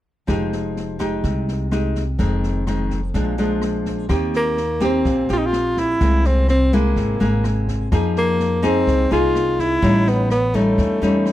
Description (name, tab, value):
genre	bossa nova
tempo	126 BPM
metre	4/4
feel	straight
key	unclear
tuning	A4 = 445 Hz
part	nylon-string guitar	accompaniment	0.3-11.3 s	F2 to Ab4	-21 LUFS	left 1 dB	none
part	upright bass	bass	0.3-11.3 s	F1 to F2	-22 LUFS	equal	none
part	open jazz drum kit	drums	0.3-11.3 s	kick drum, rim click, snare drum	-27 LUFS	equal	none
part	breathy tenor saxophone	melody	4.4-11.3 s	A3 to F4	-20 LUFS	equal	none
room	studio reverb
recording	dry, close 1970s-style studio recording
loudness	-17 LUFS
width	side -13 dB against mid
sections	0.3-4.1 A section; 4.1-11.3 B section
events	none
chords	0.3 Fm9; 2.2 Fm7; 3.1 Bb7; 4.1 Eb6; 6.0 Caug7; 7.9 Fm7; 9.8 A7#11